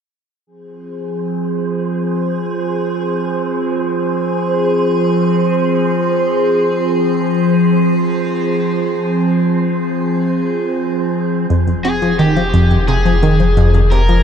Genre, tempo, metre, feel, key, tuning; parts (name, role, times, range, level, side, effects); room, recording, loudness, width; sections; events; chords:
ambient, sequencer-driven space music; free time; F minor; A4 = 440 Hz
evolving wavetable pad; sustained chords; 0.8-14.2 s; F3 to Ab4; -16 LUFS; equal; phaser, built-in reverb
wind-like tuned noise texture; texture; 1.6-11.5 s; C5; -23 LUFS; right 4 dB; built-in reverb
tight sequenced synth; riff; 11.5-14.2 s; F2 to F3; -14 LUFS; equal; chorus, ping-pong delay
warm sub bass; bass; 11.5-14.2 s; F1; -16 LUFS; equal
electronic hi-hat and woodblock; percussion; 11.5-14.2 s; -43 LUFS; right 1 dB; overdrive
lead guitar through a small cranked amp; melody; 11.8-14.2 s; G4 to Bb4; -18 LUFS; left 1 dB; overdrive, ping-pong delay
wet huge ambient reverb, RT60 7.3 s; dark, warm production; -13 LUFS; side -7 dB against mid
0.5-11.5 A section; 11.5-14.2 B section
0.5 Fm